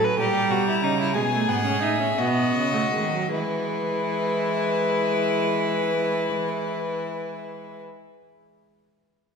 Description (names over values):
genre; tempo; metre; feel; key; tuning
classical, baroque-style fugue for string quartet; 50-65 BPM (dotted quarters); 6/8; straight; E major; A4 = 440 Hz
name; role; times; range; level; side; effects
rich violin; second line; 0.0-7.8 s; D#4 to B4; -26 LUFS; left 2 dB; none
warm viola; accompaniment; 0.0-7.8 s; F#3 to D#4; -27 LUFS; right 4 dB; none
rich cello; bass; 0.0-7.8 s; G#2 to E3; -29 LUFS; right 4 dB; none
rich violin; melody; 0.2-7.8 s; B4 to A#5; -28 LUFS; left 5 dB; none
room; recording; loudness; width
wet concert hall reverb, RT60 1.9 s; recorded in a church or concert hall; -21 LUFS; side -6 dB against mid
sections
0.0-3.3 A section; 3.3-8.1 B section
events
slowing down 0.0-3.3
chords
0.2 A#dim7; 1.1 E; 2.2 B; 3.3 E